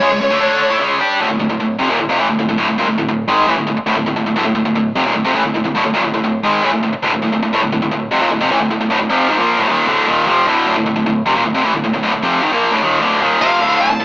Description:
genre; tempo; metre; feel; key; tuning
metal; 152 BPM; 4/4; straight; unclear; A4 = 440 Hz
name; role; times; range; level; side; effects
high-gain lead guitar; melody; 0.0-0.8, 13.4-14.0 s; C#5 to A5; -17 LUFS; equal; distortion, digital delay
tight distorted guitar; riff; 0.0-14.0 s; D2 to G4; -13 LUFS; equal; distortion
room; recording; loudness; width
light reverb, digital ambience; small speaker sound; -12 LUFS; side -22 dB against mid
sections
0.0-1.2 A section; 1.2-13.8 B section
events
none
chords
0.0 C#5; 1.2 Dm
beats
0.00 0.40 0.79 | 1.19 1.58 1.98 2.38 | 2.77 3.17 3.57 3.96 | 4.36 4.75 5.15 5.55 | 5.94 6.34 6.73 7.13 | 7.52 7.91 8.31 8.70 | 9.10 9.49 9.88 10.28 | 10.67 11.06 11.45 11.85 | 12.24 12.63 13.02 13.41 | 13.81

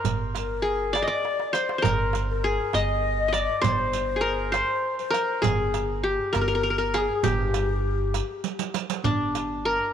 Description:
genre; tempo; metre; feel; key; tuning
Arabic maqam ensemble; 67 BPM (dotted quarters); 6/8; straight; G maqam kurd; A4 = 439 Hz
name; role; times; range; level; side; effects
qanun; melody; 0.0-9.9 s; D4 to Eb5; -25 LUFS; equal; none
upright bass; bass; 0.0-9.8 s; G1; -29 LUFS; right 1 dB; none
darbuka; percussion; 0.0-9.5 s; none; -30 LUFS; right 7 dB; none
riq; percussion; 0.1-9.5 s; none; -33 LUFS; right 16 dB; none
breathy ney; second line; 0.4-8.7 s; G4 to Eb5; -30 LUFS; left 11 dB; none
room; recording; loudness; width
light reverb, small room ambience; 1960s-style stereo with parts hard left and right; -23 LUFS; side -9 dB against mid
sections
0.0-9.0 A section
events
drum fill 1.2-1.8, 8.4-9.0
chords
none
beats
| 0.05 0.95 | 1.84 2.74 | 3.64 4.54 | 5.44 6.34 | 7.24 8.14 | 9.04

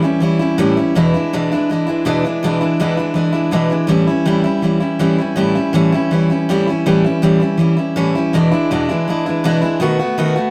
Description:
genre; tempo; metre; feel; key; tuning
rock; 163 BPM; 4/4; straight; unclear; A4 = 442 Hz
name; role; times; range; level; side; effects
picked steel-string acoustic guitar; solo; 0.0-10.5 s; E2 to F#4; -16 LUFS; equal; none
room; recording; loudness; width
moderate studio reverb, RT60 0.6 s; rough rehearsal-room recording; -16 LUFS; mono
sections
0.0-10.5 A section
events
none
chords
0.0 A7; 0.9 E7; 3.9 A7; 8.3 E7; 9.8 B7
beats
0.21 0.58 | 0.95 1.32 1.69 2.06 | 2.42 2.79 3.16 3.53 | 3.90 4.27 4.64 5.01 | 5.38 5.75 6.12 6.49 | 6.85 7.22 7.59 7.96 | 8.33 8.70 9.07 9.44 | 9.80 10.17

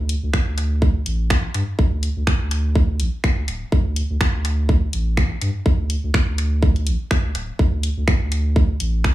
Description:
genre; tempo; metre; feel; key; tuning
minimal techno; 124 BPM; 4/4; swing 56% on 16ths; unclear; A4 = 444 Hz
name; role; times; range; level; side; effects
saturated sub bass; bass; 0.0-9.1 s; D1 to G2; -21 LUFS; equal; sidechain pumping
garage drum kit; drums; 0.1-9.1 s; finger snaps, hi-hat; -26 LUFS; equal; studio reverb, analog delay
electronic kick drum; drums; 0.3-9.1 s; none; -17 LUFS; equal; studio reverb
room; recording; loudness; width
little or no reverb; echo-heavy mix, studio ambience; -18 LUFS; side -15 dB against mid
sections
0.0-9.1 A section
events
none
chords
none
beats
0.34 0.82 1.30 | 1.79 2.27 2.75 3.24 | 3.72 4.21 4.69 5.17 | 5.66 6.14 6.62 7.11 | 7.59 8.08 8.56 9.04

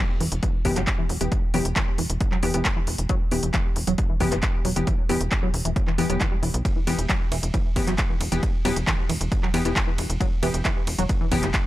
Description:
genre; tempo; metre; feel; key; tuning
driving peak-time techno; 135 BPM; 4/4; straight; E minor; A4 = 439 Hz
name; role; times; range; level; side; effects
tight sequenced synth; riff; 0.0-11.5 s; E3 to G3; -30 LUFS; equal; chorus, phaser, tube saturation, sidechain pumping, analog delay
impact; sound effects; 0.0-1.3 s; none; -42 LUFS; right 1 dB; none
tight sequencer bass; bass; 0.2-11.5 s; E1 to E2; -27 LUFS; equal; sidechain pumping
techno drum kit; drums; 0.2-11.6 s; handclaps, hi-hat, ride cymbal; -29 LUFS; equal; sidechain pumping on hats, sidechain pumping on cymbals
electronic kick drum; drums; 0.4-11.6 s; none; -24 LUFS; equal; none
wavetable chord stab; stabs; 0.7-11.5 s; E3 to G4; -28 LUFS; left 1 dB; sidechain pumping, analog delay
room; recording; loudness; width
little or no reverb; dry, gritty hardware recording; -21 LUFS; side -15 dB against mid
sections
0.0-11.7 A section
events
impact 0.0-1.3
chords
0.0 Em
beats
0.43 0.87 | 1.32 1.76 2.21 2.65 | 3.09 3.54 3.98 4.43 | 4.87 5.32 5.76 6.21 | 6.65 7.09 7.54 7.98 | 8.43 8.87 9.32 9.76 | 10.21 10.65 11.09 11.54

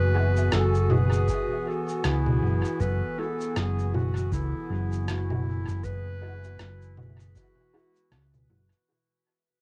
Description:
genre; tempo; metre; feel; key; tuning
ambient dub; 79 BPM; 4/4; swing 59% on 16ths; unclear; A4 = 440 Hz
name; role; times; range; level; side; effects
clear clarinet; melody; 0.0-8.5 s; E4 to B4; -34 LUFS; equal; vintage 12-bit sampler grit, cassette tape, dub echo, plate reverb
warbly tape-like pad; sustained chords; 0.0-8.9 s; E3 to G#5; -36 LUFS; equal; chorus, built-in reverb, vintage 12-bit sampler grit, cassette tape
hollow-body short-scale fingered electric bass; bass; 0.0-8.7 s; F#1 to C#2; -28 LUFS; equal; none
filtered dub chord stab; stabs; 0.1-8.7 s; G#3 to F#4; -42 LUFS; equal; none
electronic cabasa, rim click and congas; drums; 0.4-8.8 s; none; -33 LUFS; equal; overdrive, cassette tape, dub echo
electronic kick drum; drums; 1.3-7.5 s; none; -37 LUFS; equal; cassette tape
room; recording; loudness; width
light reverb; home recording on cassette; -26 LUFS; mono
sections
0.0-8.9 A section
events
fade-out 0.8-8.9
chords
0.0 Eadd9/F#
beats
0.52 1.28 2.04 | 2.80 3.56 4.32 5.08 | 5.84 6.60 7.36 8.12

